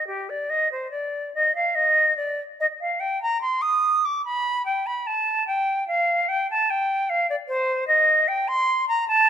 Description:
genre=classical, baroque-style fantasia for unaccompanied flute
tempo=74 BPM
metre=3/4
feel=rubato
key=unclear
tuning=A4 = 437 Hz
part: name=silver concert flute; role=solo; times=0.0-9.3 s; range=G4 to Eb6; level=-20 LUFS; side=right 1 dB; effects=none
room=moderate recital hall reverb, RT60 1.4 s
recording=close, detailed microphones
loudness=-20 LUFS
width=side -9 dB against mid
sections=0.0-9.3 A section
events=none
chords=none

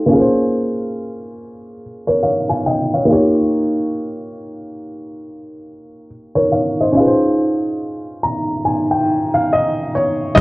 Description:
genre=lo-fi hip hop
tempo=70 BPM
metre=4/4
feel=swing 61% on 16ths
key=unclear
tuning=A4 = 441 Hz
part: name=dark upright piano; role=accompaniment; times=0.0-10.4 s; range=G3 to Bb5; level=-15 LUFS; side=equal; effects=cassette tape, plate reverb
part: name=cajon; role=drums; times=10.4 s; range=none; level=-11 LUFS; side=equal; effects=vintage 12-bit sampler grit
room=moderate studio reverb, RT60 0.5 s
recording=worn, warbling old tape, cassette tape, warbly pitch drift, low-pass filter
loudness=-14 LUFS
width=side -21 dB against mid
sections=0.0-10.4 A section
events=filter sweep 0.0-10.4; upright piano fill 7.8-10.4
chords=0.1 Bbm7; 3.1 Eb7; 6.9 Dbmaj7

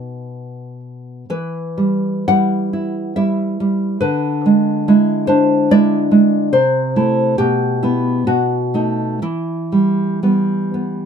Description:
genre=romantic piece for solo classical guitar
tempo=59-73 BPM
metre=3/4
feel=rubato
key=E minor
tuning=A4 = 442 Hz
part: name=nylon-string guitar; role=solo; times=0.0-11.1 s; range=B2 to F#5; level=-14 LUFS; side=right 1 dB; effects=none
room=light reverb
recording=close, detailed microphones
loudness=-14 LUFS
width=side -7 dB against mid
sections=0.0-11.1 A section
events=none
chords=0.0 B; 1.3 Em; 4.0 E7/D; 6.6 Am/C; 7.4 Em/B; 8.3 B7; 9.2 Em

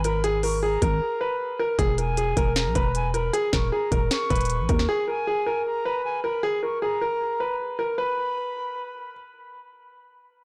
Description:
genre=hip hop, trap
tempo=155 BPM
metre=4/4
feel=half-time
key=unclear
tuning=A4 = 441 Hz
part: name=warm concert grand piano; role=melody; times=0.0-9.1 s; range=G#4 to B4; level=-28 LUFS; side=equal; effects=tape echo
part: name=silver concert flute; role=second line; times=0.0-9.1 s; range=G#5 to C#6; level=-35 LUFS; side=equal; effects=tape echo
part: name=growling 808-style bass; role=bass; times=0.0-4.9 s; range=D#1 to D#2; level=-28 LUFS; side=equal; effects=none
part: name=trap drum kit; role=drums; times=0.0-4.9 s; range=hi-hat, kick drum, snare drum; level=-28 LUFS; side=equal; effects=none
room=moderate plate reverb, RT60 1.2 s, studio ambience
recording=blown-out, overdriven recording, overdrive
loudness=-25 LUFS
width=mono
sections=0.0-1.8 A section; 1.8-8.0 B section; 8.0-10.4 C section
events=break 1.0-1.8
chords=0.0 G#madd9; 1.8 E; 3.3 D#5; 4.9 N.C.

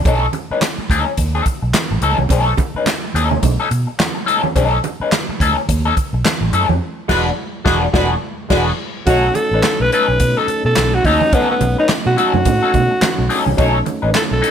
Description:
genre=funk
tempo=106 BPM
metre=4/4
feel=swing 60% on 16ths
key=B mixolydian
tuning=A4 = 438 Hz
part: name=vintage muted fingered electric bass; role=bass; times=0.0-14.4 s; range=E1 to B2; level=-18 LUFS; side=right 1 dB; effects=none
part: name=electric guitar at the edge of break-up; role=accompaniment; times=0.1-14.5 s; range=C#4 to B4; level=-19 LUFS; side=left 4 dB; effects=wah
part: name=swinging big-band drum kit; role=drums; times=0.1-14.5 s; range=crash cymbal, handclaps, hi-hat, kick drum, snare drum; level=-20 LUFS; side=equal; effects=none
part: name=congas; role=percussion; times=0.1-14.3 s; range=none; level=-24 LUFS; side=right 8 dB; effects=none
part: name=warm horn section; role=second line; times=7.1-9.2, 13.6-13.8 s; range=G#3 to C#5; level=-21 LUFS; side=right 2 dB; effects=none
part: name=raspy alto saxophone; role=melody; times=9.1-14.5 s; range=B3 to B4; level=-16 LUFS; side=equal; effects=slapback echo
part: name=percussive tonewheel organ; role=sustained chords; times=9.1-14.5 s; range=F#3 to D#4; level=-25 LUFS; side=right 2 dB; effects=slow rotary speaker, chorus vibrato
room=light reverb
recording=none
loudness=-14 LUFS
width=side -8 dB against mid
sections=0.0-9.1 A section; 9.1-14.5 B section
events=band accent 6.8-9.1; alto saxophone solo 9.1-14.5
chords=0.1 B9; 6.8 E9; 9.1 B9

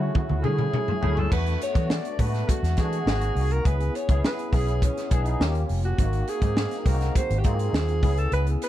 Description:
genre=polished 1980s jazz-funk pop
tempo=103 BPM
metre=4/4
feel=straight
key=unclear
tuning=A4 = 439 Hz
part: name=warm alto saxophone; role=melody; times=0.0-8.7 s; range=C#4 to D5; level=-30 LUFS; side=right 1 dB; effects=none
part: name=barky tine electric piano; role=accompaniment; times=0.0-8.7 s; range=G#3 to G#4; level=-31 LUFS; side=left 1 dB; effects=ensemble chorus
part: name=vintage muted fingered electric bass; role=bass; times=0.0-8.5 s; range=E#1 to E3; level=-25 LUFS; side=equal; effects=none
part: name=crisp fusion drum kit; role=drums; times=0.1-8.7 s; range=crash cymbal, hi-hat, kick drum, snare drum, toms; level=-25 LUFS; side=equal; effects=none
room=little or no reverb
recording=none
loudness=-22 LUFS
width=side -13 dB against mid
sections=0.0-1.3 A section; 1.3-8.7 B section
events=drum fill 0.0-1.3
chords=0.0 Dmaj9; 1.3 E7sus4; 3.1 G#7; 3.7 C#m7; 5.4 D#7; 6.0 G#7; 8.0 C#m7

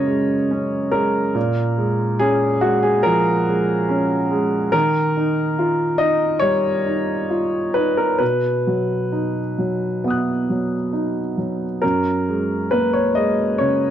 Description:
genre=neoclassical minimalist piano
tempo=65-72 BPM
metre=4/4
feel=rubato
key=F# major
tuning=A4 = 437 Hz
part: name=warm baby grand piano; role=solo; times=0.0-13.9 s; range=F#2 to F#6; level=-17 LUFS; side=equal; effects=none
room=light reverb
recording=dry, close 1970s-style studio recording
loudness=-17 LUFS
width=side -10 dB against mid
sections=0.0-13.9 A section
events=none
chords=0.0 F#add9; 1.4 A#m7; 4.7 D#add9; 8.2 B; 11.8 F#add9

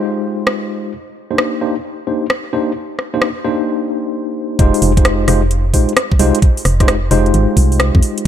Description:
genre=UK garage, two-step garage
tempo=131 BPM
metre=4/4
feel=swing 66% on 16ths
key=F dorian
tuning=A4 = 440 Hz
part: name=tine electric piano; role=stabs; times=0.0-8.2 s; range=Ab3 to C5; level=-17 LUFS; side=left 1 dB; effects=overdrive, fast stereo tremolo, dub echo
part: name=garage drum kit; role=drums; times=0.5-8.2 s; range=hi-hat, rim click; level=-18 LUFS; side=equal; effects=none
part: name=organ-like FM bass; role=bass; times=4.6-8.0 s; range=F1 to F2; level=-14 LUFS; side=equal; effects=tube saturation
part: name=electronic kick drum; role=drums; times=4.6-8.0 s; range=none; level=-12 LUFS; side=equal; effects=none
room=digital ambience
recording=none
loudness=-13 LUFS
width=side -10 dB against mid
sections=0.0-4.6 A section; 4.6-8.3 B section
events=drop 4.6-8.3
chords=0.0 Fm7; 0.9 Cm9; 4.6 Fm7

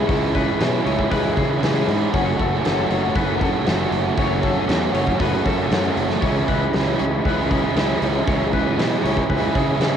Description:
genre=rock, shoegaze and dream pop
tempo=117 BPM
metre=4/4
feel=straight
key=unclear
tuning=A4 = 441 Hz
part: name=twangy electric guitar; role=arpeggios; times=0.0-10.0 s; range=G#4 to C#5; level=-30 LUFS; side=left 11 dB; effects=lush chorus, cassette tape, tape echo
part: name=biting overdriven guitar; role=riff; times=0.0-10.0 s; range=F#2 to F#4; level=-22 LUFS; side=right 8 dB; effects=reverse reverb, cassette tape
part: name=raw garage guitar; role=riff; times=0.0-10.0 s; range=F#2 to F#4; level=-26 LUFS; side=left 11 dB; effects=overdrive, ensemble chorus, cassette tape
part: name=fuzz fingered electric bass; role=bass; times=0.0-10.0 s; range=F#1 to C#3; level=-24 LUFS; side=left 1 dB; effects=overdrive
part: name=huge arena drum kit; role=drums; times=0.1-9.9 s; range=hi-hat, kick drum, snare drum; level=-24 LUFS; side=left 1 dB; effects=cassette tape
room=light reverb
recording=home recording on cassette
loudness=-17 LUFS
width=side -8 dB against mid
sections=0.0-10.0 A section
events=none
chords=0.0 C#m7; 2.1 F#m; 6.2 C#m7

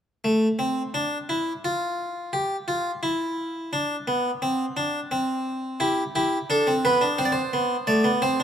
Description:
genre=classical, baroque-style 3-part fugue for harpsichord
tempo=86 BPM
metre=4/4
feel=straight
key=A minor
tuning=A4 = 440 Hz
part: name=harpsichord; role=solo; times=0.2-8.4 s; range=A3 to D5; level=-22 LUFS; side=equal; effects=none
room=moderate concert hall reverb, RT60 2.1 s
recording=close, detailed microphones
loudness=-22 LUFS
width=side -9 dB against mid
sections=0.2-8.4 A section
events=none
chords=0.2 N.C.; 5.8 Em; 7.2 Am

